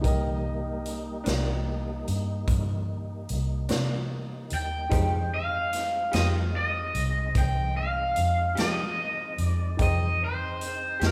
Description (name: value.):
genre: slow blues.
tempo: 49 BPM (dotted quarters).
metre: 12/8.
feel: straight.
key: unclear.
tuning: A4 = 440 Hz.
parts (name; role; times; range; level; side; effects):
warm upright piano; accompaniment; 0.0-11.1 s; Eb4 to G5; -40 LUFS; equal; none.
tonewheel organ; sustained chords; 0.0-11.1 s; G3 to Eb4; -41 LUFS; equal; chorus vibrato, fast rotary speaker.
vintage muted fingered electric bass; bass; 0.0-11.1 s; C2 to F3; -31 LUFS; equal; none.
raw garage drum kit; drums; 0.0-11.1 s; hi-hat, kick drum, snare drum; -33 LUFS; equal; none.
electric guitar through a small old amp; accompaniment; 1.2-11.1 s; C3 to G4; -38 LUFS; equal; harmonic tremolo.
raw garage guitar; melody; 4.5-11.1 s; Bb4 to G5; -31 LUFS; equal; overdrive, spring reverb.
room: moderate large studio reverb, RT60 0.9 s.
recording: band playing live in one room.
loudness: -28 LUFS.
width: mono.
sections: 0.0-11.1 A section.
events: none.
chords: 0.0 Cm7; 4.9 Fm9.